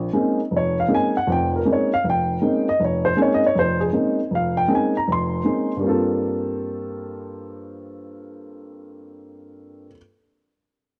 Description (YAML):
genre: jazz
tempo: 158 BPM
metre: 4/4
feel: swing 64% on 8ths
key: unclear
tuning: A4 = 441 Hz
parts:
  - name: dark upright piano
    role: accompaniment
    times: 0.0-10.0 s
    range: F1 to C6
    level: -22 LUFS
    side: equal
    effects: cassette tape
room: light reverb, studio ambience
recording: home recording on cassette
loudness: -21 LUFS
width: mono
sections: 0.0-5.8 A section; 5.8-8.9 B section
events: none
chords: 0.0 Bbm11; 5.8 Gm11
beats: 0.13 0.51 0.89 | 1.27 1.65 2.03 2.41 | 2.79 3.17 3.55 3.93 | 4.31 4.69 5.07 5.45 | 5.83 6.21 6.59 6.97 | 7.36 7.74 8.12 8.49